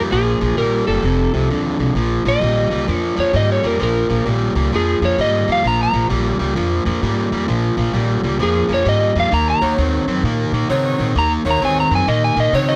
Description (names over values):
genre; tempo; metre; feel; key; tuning
blues; 130 BPM; 4/4; swing 64% on 8ths; Bb minor; A4 = 436 Hz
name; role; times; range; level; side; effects
crunchy overdriven guitar; riff; 0.0-12.8 s; F2 to C4; -22 LUFS; equal; none
upright bass; bass; 0.0-12.8 s; F1 to Db3; -22 LUFS; equal; none
electric slide guitar; melody; 0.1-12.8 s; Ab4 to Bb5; -21 LUFS; equal; none
bright saxophone section; stabs; 9.6-12.8 s; Eb4 to Db5; -24 LUFS; equal; none
room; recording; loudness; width
light reverb; none; -17 LUFS; mono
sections
0.0-2.0 A section; 2.0-12.8 B section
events
electric slide guitar solo 2.0-12.8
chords
0.0 Bb7(no3); 1.0 F7; 2.0 Bb7(no3); 9.3 Ebm7